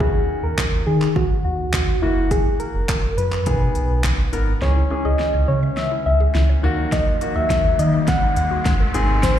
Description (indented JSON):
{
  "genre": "dance-pop",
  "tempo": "104 BPM",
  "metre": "4/4",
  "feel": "straight",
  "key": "unclear",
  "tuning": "A4 = 436 Hz",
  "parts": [
    { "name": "soft struck synth lead", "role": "melody", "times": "0.0-9.4 s", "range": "E4 to F#5", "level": "-23 LUFS", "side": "left 1 dB", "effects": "chorus, ping-pong delay, slapback echo" },
    { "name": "clear baby grand piano", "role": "accompaniment", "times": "0.0-9.4 s", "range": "D#3 to A#4", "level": "-27 LUFS", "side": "left 2 dB", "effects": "sidechain pumping, slapback echo" },
    { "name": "sub bass with octave", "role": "bass", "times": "0.0-9.4 s", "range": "F#1 to D#3", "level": "-20 LUFS", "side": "equal", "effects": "sidechain pumping" },
    { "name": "deep house drum kit", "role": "drums", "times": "0.0-9.4 s", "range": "handclaps, hi-hat, kick drum, shaker, snare drum", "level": "-21 LUFS", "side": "equal", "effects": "overdrive" },
    { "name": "warm woodwind section", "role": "sustained chords", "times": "4.6-9.4 s", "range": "B#2 to C#4", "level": "-31 LUFS", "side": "right 2 dB", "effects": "sidechain pumping" },
    { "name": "mallet-like synth pluck", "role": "arpeggios", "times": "4.6-9.3 s", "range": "F#3 to E5", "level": "-33 LUFS", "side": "left 1 dB", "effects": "chorus, phaser, sidechain pumping, ping-pong delay, slapback echo" },
    { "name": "riser", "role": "sound effects", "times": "5.9-9.4 s", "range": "none", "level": "-30 LUFS", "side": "equal", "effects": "slapback echo" },
    { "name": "tambourine", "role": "percussion", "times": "9.2-9.4 s", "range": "none", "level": "-36 LUFS", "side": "right 5 dB", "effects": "none" }
  ],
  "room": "digital ambience",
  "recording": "live gig heard through the venue's PA, recital hall reverb",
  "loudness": "-17 LUFS",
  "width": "side -10 dB against mid",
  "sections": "0.0-4.6 A section; 4.6-9.4 B section",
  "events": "build-up 4.6-9.4; drum fill 4.6-9.4; riser 5.9-9.4",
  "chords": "0.0 D#m7; 2.0 F#7; 3.5 B6; 4.6 C#m; 6.6 D#m",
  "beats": "| 0.00 0.58 1.16 1.73 | 2.31 2.89 3.46 4.04 | 4.62 5.20 5.77 6.35 | 6.93 7.50 8.08 8.66 | 9.23"
}